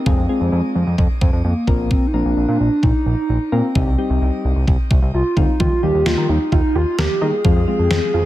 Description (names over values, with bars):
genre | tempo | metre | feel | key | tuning
synth-pop | 130 BPM | 4/4 | straight | Eb major | A4 = 440 Hz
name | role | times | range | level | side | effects
hollow clarinet-like synth lead | melody | 0.0-8.3 s | Bb3 to Ab4 | -20 LUFS | right 1 dB | chorus, ping-pong delay, shimmer reverb
soft electric-piano-like synth keys | accompaniment | 0.1-8.2 s | F3 to Bb4 | -25 LUFS | left 3 dB | chorus, shimmer reverb
fat analog bass | bass | 0.1-8.2 s | Bb1 to Eb3 | -19 LUFS | equal | none
detuned 8-bit digital drum machine | drums | 0.1-8.0 s | kick drum, snare drum | -18 LUFS | equal | gated reverb
soft round pluck | arpeggios | 5.6-8.3 s | F3 to Eb5 | -28 LUFS | right 4 dB | chorus, ping-pong delay, shimmer reverb
room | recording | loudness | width
light reverb | none | -15 LUFS | side -14 dB against mid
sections
0.0-8.3 A section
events
none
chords
0.1 Fm; 1.7 Bbsus2; 3.8 Cm; 5.6 Ebadd9; 7.4 Fm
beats
| 0.06 0.52 0.98 1.45 | 1.91 2.37 2.83 3.29 | 3.75 4.21 4.68 5.14 | 5.60 6.06 6.52 6.98 | 7.45 7.91